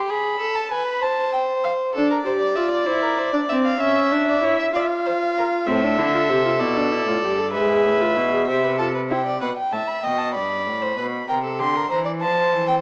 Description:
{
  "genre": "classical, baroque-style fugue for string quartet",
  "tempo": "64 BPM (dotted quarters)",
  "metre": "6/8",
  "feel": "straight",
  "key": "unclear",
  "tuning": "A4 = 438 Hz",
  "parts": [
    { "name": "warm violin", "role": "second line", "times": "0.0-12.8 s", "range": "G4 to F5", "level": "-27 LUFS", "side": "equal", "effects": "none" },
    { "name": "warm violin", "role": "melody", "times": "0.1-12.7 s", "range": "D5 to C6", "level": "-26 LUFS", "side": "equal", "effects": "none" },
    { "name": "warm viola", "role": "accompaniment", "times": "2.0-9.2 s", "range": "C4 to A4", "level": "-24 LUFS", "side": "equal", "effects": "none" },
    { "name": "clear cello", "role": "bass", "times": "5.7-12.8 s", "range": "G2 to F3", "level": "-28 LUFS", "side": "equal", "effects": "none" }
  ],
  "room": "moderate recital hall reverb, RT60 1.5 s",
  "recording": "small speaker sound",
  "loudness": "-21 LUFS",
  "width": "mono",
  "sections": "0.0-9.4 A section; 9.4-12.8 B section",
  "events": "none",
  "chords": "0.1 G#m; 1.0 Am/C; 2.0 Dm; 2.9 Cadd9; 3.8 C#m; 4.7 N.C.; 5.7 Am; 6.6 Bm7b5; 7.5 E/G#; 8.5 Am/C; 9.4 B7; 10.4 Gadd9; 11.3 C7; 12.2 F"
}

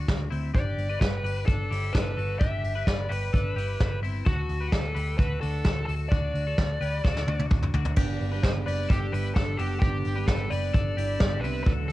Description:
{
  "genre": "jangly indie pop",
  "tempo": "130 BPM",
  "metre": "4/4",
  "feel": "straight",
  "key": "G major",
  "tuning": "A4 = 438 Hz",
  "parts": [
    { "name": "twelve-string electric guitar", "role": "arpeggios", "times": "0.0-11.9 s", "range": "C4 to B4", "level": "-36 LUFS", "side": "left 7 dB", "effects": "wide subtle chorus, plate reverb" },
    { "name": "vintage muted picked electric bass", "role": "bass", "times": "0.0-11.9 s", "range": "F#1 to D2", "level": "-29 LUFS", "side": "equal", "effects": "transformer saturation" },
    { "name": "soft brush drum kit", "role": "drums", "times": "0.1-11.9 s", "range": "crash cymbal, hi-hat, kick drum, snare drum, toms", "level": "-26 LUFS", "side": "equal", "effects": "cassette tape" },
    { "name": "dark smooth lead guitar", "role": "melody", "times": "0.6-11.9 s", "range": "F#4 to E5", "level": "-33 LUFS", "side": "left 1 dB", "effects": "overdrive, cassette tape, plate reverb" },
    { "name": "fingerpicked plugged-in steel-string acoustic guitar", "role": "accompaniment", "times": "8.0-11.9 s", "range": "G2 to D4", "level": "-35 LUFS", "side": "right 8 dB", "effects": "plate reverb" }
  ],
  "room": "light reverb",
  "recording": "home recording on cassette",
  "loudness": "-24 LUFS",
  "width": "side -16 dB against mid",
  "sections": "0.0-8.0 A section; 8.0-11.9 B section",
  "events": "drum fill 7.0-8.0",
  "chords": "0.0 D; 0.5 G; 4.3 D; 8.0 G"
}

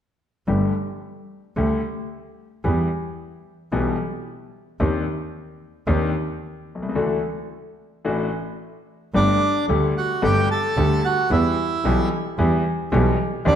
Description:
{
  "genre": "tango",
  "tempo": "111 BPM",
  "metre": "4/4",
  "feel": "rubato",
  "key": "G major",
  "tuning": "A4 = 440 Hz",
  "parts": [
    { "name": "bright concert grand piano", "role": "accompaniment", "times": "0.5-13.6 s", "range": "G1 to G4", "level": "-23 LUFS", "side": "left 2 dB", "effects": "none" },
    { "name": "clear double bass", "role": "bass", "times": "0.5-13.6 s", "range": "G1 to E2", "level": "-23 LUFS", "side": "right 2 dB", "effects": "none" },
    { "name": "bandoneon", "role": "melody", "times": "9.2-13.6 s", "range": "D4 to A5", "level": "-21 LUFS", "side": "right 2 dB", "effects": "none" }
  ],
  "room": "moderate scoring stage reverb, RT60 1.6 s",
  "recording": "none",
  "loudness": "-20 LUFS",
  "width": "side -9 dB against mid",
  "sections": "0.5-9.1 A section; 9.1-13.6 B section",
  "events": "none",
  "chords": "0.5 Gsus2; 2.6 Em; 4.8 Cmadd9/Eb; 7.0 Dadd9; 9.1 Gsus2; 11.3 Em"
}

